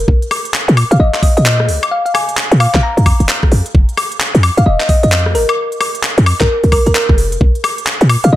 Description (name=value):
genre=UK garage, two-step garage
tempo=131 BPM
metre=4/4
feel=swing 62% on 16ths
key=unclear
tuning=A4 = 440 Hz
part: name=thumb-piano-like synth pluck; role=melody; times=0.0-8.4 s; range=Bb4 to Bb5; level=-18 LUFS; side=left 1 dB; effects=chorus, dub echo
part: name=short 808-style bass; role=bass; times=0.0-8.4 s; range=Eb1 to Bb2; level=-11 LUFS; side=equal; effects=none
part: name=electronic kick drum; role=drums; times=0.1-7.5 s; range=none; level=-12 LUFS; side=equal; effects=overdrive
part: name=garage drum kit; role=drums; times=0.2-8.3 s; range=handclaps, hi-hat, rim click, woodblock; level=-16 LUFS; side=left 1 dB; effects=none
room=little or no reverb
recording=none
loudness=-10 LUFS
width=side -14 dB against mid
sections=0.0-8.4 A section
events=none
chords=0.1 Bb5; 3.7 N.C.